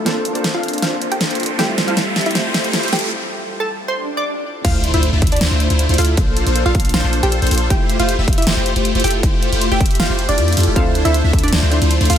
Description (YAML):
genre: future bass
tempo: 157 BPM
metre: 4/4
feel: half-time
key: F major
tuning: A4 = 440 Hz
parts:
  - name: glassy digital keys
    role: accompaniment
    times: 0.0-4.7, 10.8-12.2 s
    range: F3 to C5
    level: -25 LUFS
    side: right 2 dB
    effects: chorus, sidechain pumping, ping-pong delay
  - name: big bright polysynth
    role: riff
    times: 0.0-12.2 s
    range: A3 to F5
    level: -20 LUFS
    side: left 1 dB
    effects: wide subtle chorus, sidechain pumping
  - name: riser, swell and impact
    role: sound effects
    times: 0.0-6.2 s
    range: none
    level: -26 LUFS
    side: equal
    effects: none
  - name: big-room dance drum kit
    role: drums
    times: 0.1-12.2 s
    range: crash cymbal, hi-hat, snare drum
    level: -21 LUFS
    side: equal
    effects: none
  - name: wide unison pluck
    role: melody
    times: 0.5-12.2 s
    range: D4 to D6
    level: -23 LUFS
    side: right 1 dB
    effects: sidechain pumping, ping-pong delay
  - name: warm 808-style bass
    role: bass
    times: 4.6-12.2 s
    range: F1 to F2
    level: -17 LUFS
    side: equal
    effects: sidechain pumping
  - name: electronic kick drum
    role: drums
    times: 4.6-11.4 s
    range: none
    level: -17 LUFS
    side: equal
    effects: none
room: little or no reverb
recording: high-pass filter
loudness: -14 LUFS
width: side -9 dB against mid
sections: 0.0-4.6 A section; 4.6-12.2 B section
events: build-up 0.0-4.6; drum fill 0.0-3.1; riser 0.0-3.1; filter sweep on analog polysynth 0.0-4.6; filter sweep on synth pluck 0.0-4.6; break 3.1-4.6; swell 3.9-4.6; drop 4.6-12.2; impact 4.6-6.2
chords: 0.1 Bbmaj9; 1.6 Fmaj9; 4.6 Dm9; 6.2 Bbmaj9; 7.7 Fmaj9; 10.8 Dm9